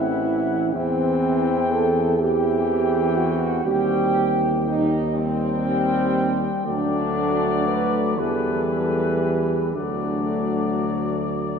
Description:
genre	classical, hymn-like piece for brass band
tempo	37-42 BPM (dotted quarters)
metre	6/8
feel	rubato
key	unclear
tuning	A4 = 440 Hz
part	mellow cornet	melody	0.0-11.6 s	B4 to G5	-29 LUFS	left 6 dB	none
part	dark French horn section	second line	0.0-11.3 s	C4 to B4	-24 LUFS	right 4 dB	none
part	clear trombone	accompaniment	0.0-11.6 s	E3 to G3	-28 LUFS	right 1 dB	none
part	warm euphonium	accompaniment	0.0-11.6 s	G3 to C4	-28 LUFS	left 4 dB	none
part	clear tuba	bass	0.0-11.6 s	A1 to E2	-24 LUFS	left 1 dB	none
room	wet cathedral reverb, RT60 4.7 s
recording	dark, warm production, nothing above 7.8 kHz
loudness	-19 LUFS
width	side -6 dB against mid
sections	0.0-11.6 A section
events	none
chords	0.0 Am; 0.8 C/E; 3.7 Cm/Eb; 6.7 D; 8.2 Em; 9.8 D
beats	| 0.76 2.21 | 3.65 5.16 | 6.67 8.18 | 9.76 11.36

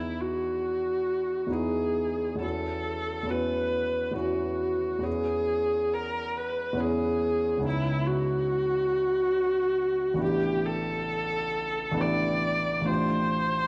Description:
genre	classical, impressionist duo for viola and grand piano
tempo	69 BPM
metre	3/4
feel	rubato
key	E major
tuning	A4 = 442 Hz
part	rich viola	melody	0.0-13.7 s	E4 to D5	-30 LUFS	equal	none
part	clear grand piano	accompaniment	0.0-13.7 s	A1 to G#4	-33 LUFS	equal	none
room	wet concert hall reverb, RT60 2.0 s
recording	dark, warm production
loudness	-28 LUFS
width	mono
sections	0.0-13.7 A section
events	none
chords	0.0 Emaj7; 2.4 B11/E; 5.1 E6; 7.6 C#m11; 10.2 A9sus4; 12.9 G9sus4/A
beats	0.66 1.54 | 2.43 3.31 4.19 | 5.06 5.94 6.80 | 7.65 8.49 9.35 | 10.21 11.07 12.00 | 12.88

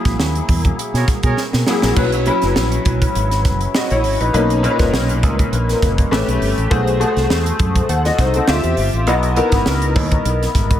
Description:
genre	polished 1980s jazz-funk pop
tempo	101 BPM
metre	4/4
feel	swing 54% on 16ths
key	unclear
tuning	A4 = 437 Hz
part	bright concert grand piano	accompaniment	0.0-10.8 s	A#2 to F#5	-18 LUFS	left 2 dB	ensemble chorus
part	fingered electric bass	bass	0.1-10.8 s	F#1 to B2	-19 LUFS	equal	none
part	crisp fusion drum kit	drums	0.1-10.8 s	crash cymbal, hi-hat, kick drum, snare drum	-19 LUFS	right 1 dB	none
part	warm horn section	second line	0.9-1.4 s	G#4 to C#5	-27 LUFS	right 4 dB	ping-pong delay
room	light reverb, small room reverb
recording	none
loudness	-14 LUFS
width	side -11 dB against mid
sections	0.0-2.0 A section; 2.0-10.8 B section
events	band accent 0.0-2.0; drum fill 1.4-2.0; grand piano fill 5.8-6.7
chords	0.0 F#9; 2.0 F#7sus4; 4.3 Bmaj9; 6.1 A9; 6.7 G#7b9/B; 8.5 Dm11; 9.1 C#m11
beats	0.19 0.78 1.38 | 1.97 2.56 3.15 3.75 | 4.34 4.93 5.52 6.12 | 6.71 7.30 7.89 8.48 | 9.07 9.66 10.26

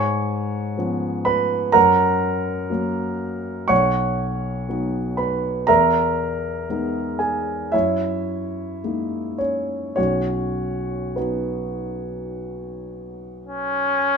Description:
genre	classical, romantic duo for trumpet and grand piano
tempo	50-63 BPM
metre	4/4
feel	rubato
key	B major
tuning	A4 = 440 Hz
part	dark grand piano	accompaniment	0.0-14.2 s	B1 to C#6	-20 LUFS	right 1 dB	none
part	bright trumpet	melody	13.5-14.2 s	C#4	-19 LUFS	left 2 dB	none
room	moderate stone room reverb, RT60 1.0 s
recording	minimal, uncompressed stereo recording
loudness	-20 LUFS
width	side -6 dB against mid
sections	0.0-14.2 A section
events	none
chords	0.0 C#7/G#; 1.8 F#; 3.7 B; 5.7 Emaj7; 7.7 F#13; 10.0 B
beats	0.78 | 1.75 2.72 3.70 4.69 | 5.68 6.69 7.73 8.82 | 9.97 11.17 12.33 13.46

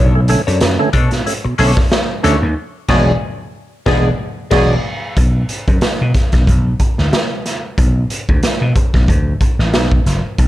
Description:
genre	funk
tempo	92 BPM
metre	4/4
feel	swing 56% on 16ths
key	unclear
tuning	A4 = 439 Hz
part	electric guitar at the edge of break-up	accompaniment	0.0-4.7 s	D4 to G#5	-22 LUFS	left 6 dB	wah, spring reverb
part	percussive tonewheel organ	stabs	0.0-4.7 s	B2 to D4	-19 LUFS	right 2 dB	overdrive, slow rotary speaker
part	vintage slap bass	bass	0.0-10.5 s	E1 to B2	-15 LUFS	equal	none
part	raw garage drum kit	drums	0.3-10.5 s	crash cymbal, hi-hat, kick drum, snare drum	-15 LUFS	equal	none
part	warm horn section	second line	2.9-4.7 s	D3 to G#4	-22 LUFS	equal	none
room	light reverb, small room ambience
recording	dark, warm production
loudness	-12 LUFS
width	side -15 dB against mid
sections	0.0-5.2 A section; 5.2-10.5 B section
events	band accent 2.6-5.2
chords	0.0 Bm9; 2.6 E9; 5.2 N.C.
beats	0.61 1.26 1.91 | 2.56 3.21 3.87 4.52 | 5.17 5.82 6.47 7.12 | 7.78 8.43 9.08 9.73 | 10.39

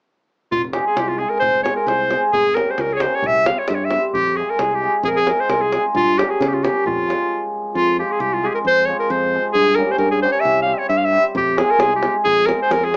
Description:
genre	balkan folk, Balkan wedding band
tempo	133 BPM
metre	2/4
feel	swing 53% on 16ths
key	F harmonic minor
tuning	A4 = 440 Hz
part	bright clarinet	melody	0.5-13.0 s	F4 to F5	-17 LUFS	equal	none
part	modern bright fingered electric bass	bass	0.5-13.0 s	F1 to Db3	-26 LUFS	equal	none
part	davul	percussion	0.5-7.2, 11.4-13.0 s	none	-25 LUFS	equal	none
part	cimbalom	accompaniment	0.7-13.0 s	F3 to Ab4	-21 LUFS	equal	none
room	moderate small room reverb, RT60 0.5 s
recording	small speaker sound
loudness	-15 LUFS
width	side -31 dB against mid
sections	0.5-7.8 A section; 7.8-13.0 A section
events	stop 7.3-7.8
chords	0.5 Fm; 2.3 Gdim; 3.2 C; 4.1 Fm; 6.0 Gdim; 6.9 Fm; 9.6 Gdim; 10.5 C; 11.4 Fm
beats	| 0.52 0.98 | 1.43 1.88 | 2.33 2.79 | 3.24 3.69 | 4.14 4.59 | 5.05 5.50 | 5.95 6.40 | 6.85 7.30 | 7.75 8.21 | 8.65 9.11 | 9.55 10.01 | 10.45 10.90 | 11.35 11.80 | 12.25 12.70

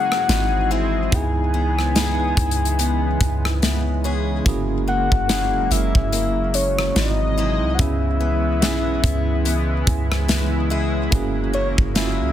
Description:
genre	contemporary R&B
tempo	72 BPM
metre	4/4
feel	swing 58% on 16ths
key	C# dorian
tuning	A4 = 439 Hz
part	soft octave-layered synth lead	melody	0.0-12.3 s	C#5 to G#5	-24 LUFS	left 3 dB	chorus, ping-pong delay
part	tine electric piano	accompaniment	0.0-12.3 s	A#3 to G#5	-28 LUFS	right 6 dB	medium tremolo
part	chorused pulse-width pad	sustained chords	0.0-12.3 s	B#2 to D#5	-27 LUFS	equal	sidechain pumping
part	picked acoustic archtop guitar	arpeggios	0.0-12.3 s	G#2 to G#4	-30 LUFS	left 7 dB	ping-pong delay
part	modern studio drum kit	drums	0.1-12.2 s	hi-hat, kick drum, rim click, snare drum	-22 LUFS	equal	none
part	soft 808-style bass	bass	0.3-12.3 s	E1 to C#2	-22 LUFS	equal	none
room	light reverb, studio reverb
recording	dense, heavily limited modern master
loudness	-18 LUFS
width	side -11 dB against mid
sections	0.0-12.3 A section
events	tine electric piano fill 2.8-4.5, 9.5-11.1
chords	0.3 G#7b13; 1.1 C#m7; 4.5 F#9; 7.0 G#7b13; 7.8 C#m7; 11.1 F#9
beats	0.29 | 1.12 1.96 2.79 3.62 | 4.46 5.29 6.12 6.96 | 7.79 8.62 9.46 10.29 | 11.12 11.96

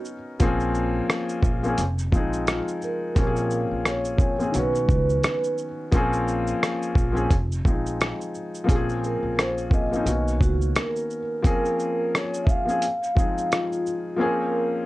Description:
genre	lo-fi hip hop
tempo	87 BPM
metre	4/4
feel	swing 57% on 16ths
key	Bb minor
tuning	A4 = 442 Hz
part	vibraphone with soft mallets	melody	0.0-14.9 s	F4 to F5	-27 LUFS	right 1 dB	tape echo
part	felt-muted upright piano	accompaniment	0.0-14.9 s	D#3 to A#4	-26 LUFS	left 2 dB	cassette tape
part	dusty soul sampler-style drum kit	drums	0.0-14.0 s	hi-hat, kick drum, rim click, shaker	-23 LUFS	equal	none
part	upright bass	bass	0.4-10.7 s	F1 to C#2	-27 LUFS	equal	none
room	moderate studio reverb, RT60 0.5 s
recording	worn, warbling old tape, cassette tape, warbly pitch drift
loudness	-21 LUFS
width	side -18 dB against mid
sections	0.0-14.9 A section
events	none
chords	0.4 Bbm9; 1.8 Fm7; 3.2 Bbm9; 4.5 Badd9; 5.9 Bbm9; 7.3 Fm7; 8.7 Bbm9; 10.1 Bmaj9; 11.4 Bbm9; 12.8 Fm7; 14.2 Bbm9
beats	| 0.41 1.09 1.78 2.47 | 3.16 3.85 4.54 5.23 | 5.92 6.61 7.30 7.99 | 8.68 9.37 10.06 10.75 | 11.44 12.13 12.82 13.51 | 14.20

